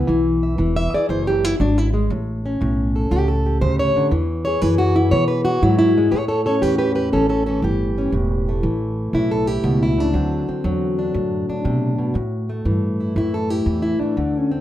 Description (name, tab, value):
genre	acoustic country blues, solo or duo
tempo	119 BPM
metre	4/4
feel	swing 68% on 8ths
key	A mixolydian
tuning	A4 = 440 Hz
part	fingerpicked plugged-in steel-string acoustic guitar	melody	0.0-14.6 s	A2 to E5	-18 LUFS	equal	plate reverb
part	upright bass	bass	0.0-14.6 s	E1 to B2	-22 LUFS	equal	none
room	moderate studio reverb, RT60 0.6 s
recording	rough home demo mix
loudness	-17 LUFS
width	side -12 dB against mid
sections	0.0-6.1 A section; 6.1-14.6 A section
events	steel-string acoustic guitar solo 0.0-6.1, 6.1-14.6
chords	0.0 E; 2.1 A7; 4.1 E; 6.1 A7; 10.1 D7; 12.2 A5